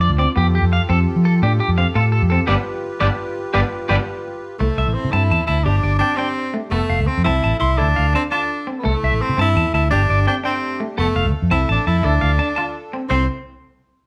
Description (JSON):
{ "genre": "highlife", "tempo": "113 BPM (dotted quarters)", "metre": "12/8", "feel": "straight", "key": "C major", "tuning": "A4 = 440 Hz", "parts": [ { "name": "electric guitar at the edge of break-up", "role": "accompaniment", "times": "0.0-13.2 s", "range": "G3 to F4", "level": "-28 LUFS", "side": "equal", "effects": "none" }, { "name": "accordion", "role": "sustained chords", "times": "0.0-13.3 s", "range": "A3 to C5", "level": "-33 LUFS", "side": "equal", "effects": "light tremolo tuning" }, { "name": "clean electric guitar", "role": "arpeggios", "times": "0.0-13.3 s", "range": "G4 to C6", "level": "-25 LUFS", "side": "equal", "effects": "harmonic tremolo" }, { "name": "fingered electric bass", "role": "bass", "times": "0.0-13.3 s", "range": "F1 to F3", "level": "-20 LUFS", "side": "equal", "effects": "none" }, { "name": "clear tenor saxophone", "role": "melody", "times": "4.6-13.3 s", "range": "A3 to E4", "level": "-24 LUFS", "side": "equal", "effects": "none" } ], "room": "moderate large studio reverb, RT60 1.1 s", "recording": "band playing live in one room", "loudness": "-18 LUFS", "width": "mono", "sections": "0.0-4.6 A section; 4.6-13.1 B section", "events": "band accent 2.5-4.6", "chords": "0.4 Fadd9; 2.5 G7; 4.6 C6; 5.7 Gsus4; 6.7 F; 7.8 Dm; 8.8 C6; 9.9 Gsus4; 11.0 F; 12.0 Dm; 13.1 C6", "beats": "| 0.36 0.89 1.42 1.95 | 2.48 3.01 3.54 4.07 | 4.60 5.13 5.66 6.19 | 6.72 7.25 7.79 8.32 | 8.85 9.38 9.91 10.44 | 10.97 11.51 12.04 12.57 | 13.10" }